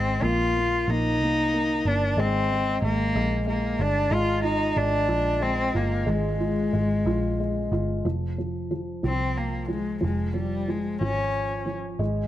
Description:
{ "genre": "six-eight pop ballad", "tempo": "61 BPM (dotted quarters)", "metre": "6/8", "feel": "straight", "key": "unclear", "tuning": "A4 = 440 Hz", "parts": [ { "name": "warm cello", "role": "melody", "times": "0.0-11.7 s", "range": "G3 to F4", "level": "-26 LUFS", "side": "left 1 dB", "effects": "none" }, { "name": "felt-muted upright piano", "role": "accompaniment", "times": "0.0-12.3 s", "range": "F3 to F4", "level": "-29 LUFS", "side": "equal", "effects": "none" }, { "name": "vintage muted picked electric bass", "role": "bass", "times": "0.0-12.3 s", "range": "F1 to C2", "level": "-28 LUFS", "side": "right 1 dB", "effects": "none" } ], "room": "light reverb, small room ambience", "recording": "none", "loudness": "-23 LUFS", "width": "side -13 dB against mid", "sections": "0.0-8.0 A section; 8.0-12.3 B section", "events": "none", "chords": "0.2 Bbsus2; 2.2 Abadd9; 4.1 Fm; 8.0 F5; 10.0 Db/F", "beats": "| 0.23 1.21 | 2.18 3.15 | 4.12 5.09 | 6.07 7.05 | 8.05 9.04 | 10.03 11.01 | 12.00" }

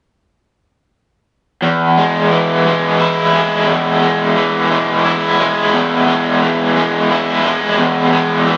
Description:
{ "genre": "rock", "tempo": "58 BPM (dotted quarters)", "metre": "6/8", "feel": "straight", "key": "E major", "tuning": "A4 = 443 Hz", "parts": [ { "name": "raw garage guitar", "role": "riff", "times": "1.6-8.6 s", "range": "E2 to E4", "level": "-14 LUFS", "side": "equal", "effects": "overdrive, tremolo" } ], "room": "moderate large studio reverb, RT60 1.1 s", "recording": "band playing live in one room, nothing above 10.6 kHz", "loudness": "-14 LUFS", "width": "mono", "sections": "1.6-8.6 A section", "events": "none", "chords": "1.6 E", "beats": "| 1.63 2.65 | 3.68 4.70 | 5.73 6.75 | 7.78" }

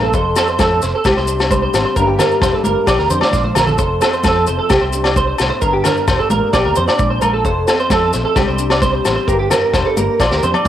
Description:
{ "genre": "highlife guitar band", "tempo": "131 BPM", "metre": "4/4", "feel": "straight", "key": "F major", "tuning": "A4 = 440 Hz", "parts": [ { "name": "nylon-string guitar", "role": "accompaniment", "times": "0.0-10.7 s", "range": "F2 to A4", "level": "-20 LUFS", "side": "left 4 dB", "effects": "cassette tape" }, { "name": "clean electric guitar", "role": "arpeggios", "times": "0.0-10.7 s", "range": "G4 to D5", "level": "-17 LUFS", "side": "right 4 dB", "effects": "ensemble chorus, cassette tape, analog delay" }, { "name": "fingered electric bass", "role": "bass", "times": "0.0-10.7 s", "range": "E1 to F2", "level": "-21 LUFS", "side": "equal", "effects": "none" }, { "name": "vintage drum kit", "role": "drums", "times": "0.1-10.7 s", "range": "kick drum, snare drum, toms", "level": "-19 LUFS", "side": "equal", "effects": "cassette tape" }, { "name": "congas", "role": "percussion", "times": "0.1-10.7 s", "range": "none", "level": "-23 LUFS", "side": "right 1 dB", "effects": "none" }, { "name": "maracas", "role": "percussion", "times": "0.1-10.7 s", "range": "none", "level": "-29 LUFS", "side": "left 8 dB", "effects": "none" }, { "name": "agogo bells", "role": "percussion", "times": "0.4-10.7 s", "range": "none", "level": "-23 LUFS", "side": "left 8 dB", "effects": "none" } ], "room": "light reverb", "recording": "home recording on cassette", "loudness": "-12 LUFS", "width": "side -11 dB against mid", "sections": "0.0-10.7 A section", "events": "drum fill 3.2-3.8, 10.2-10.7", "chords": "0.1 F; 1.0 Csus2; 2.0 Gm; 2.9 Bb6; 3.8 F; 4.7 Csus2; 5.6 Gm; 6.5 Bb6; 7.4 F; 8.4 Csus2; 9.3 Gm", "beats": "| 0.13 0.59 1.05 1.50 | 1.96 2.42 2.88 3.33 | 3.79 4.25 4.71 5.16 | 5.62 6.08 6.54 6.99 | 7.45 7.91 8.36 8.82 | 9.28 9.74 10.19 10.65" }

